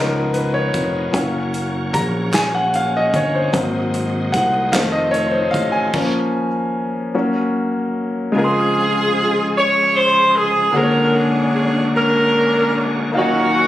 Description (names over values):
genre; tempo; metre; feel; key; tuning
slow gospel; 50 BPM (dotted quarters); 6/8; straight; Db major; A4 = 440 Hz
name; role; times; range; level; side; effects
clear grand piano; accompaniment; 0.0-13.7 s; Bb2 to C6; -18 LUFS; left 1 dB; none
bright tonewheel organ; sustained chords; 0.0-13.7 s; Bb2 to F5; -26 LUFS; right 1 dB; slow rotary speaker, chorus vibrato
fingered electric bass; bass; 0.0-5.9 s; F1 to Db2; -23 LUFS; equal; none
natural country drum kit; drums; 0.3-6.1 s; crash cymbal, hi-hat, kick drum, snare drum; -24 LUFS; right 1 dB; none
group handclap; percussion; 2.3-5.1 s; none; -27 LUFS; right 1 dB; none
warm saxophone section; melody; 8.4-13.7 s; C4 to Db5; -15 LUFS; equal; tape echo
room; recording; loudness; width
light reverb, studio ambience; recorded on a phone in the room, studio reverb, compression; -15 LUFS; side -13 dB against mid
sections
0.0-8.3 A section; 8.3-13.7 B section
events
grand piano solo 0.0-8.3; stop 5.9-8.3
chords
0.0 Db9; 1.1 Gb; 3.5 Ab7; 4.7 F7; 5.9 Bbm; 7.1 Gb; 8.3 Dbmaj7; 10.7 Bb7alt; 13.1 Ebm9/Bb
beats
| 1.14 2.34 | 3.54 4.74 | 5.94 7.14 | 8.34 9.54 | 10.74 11.94 | 13.14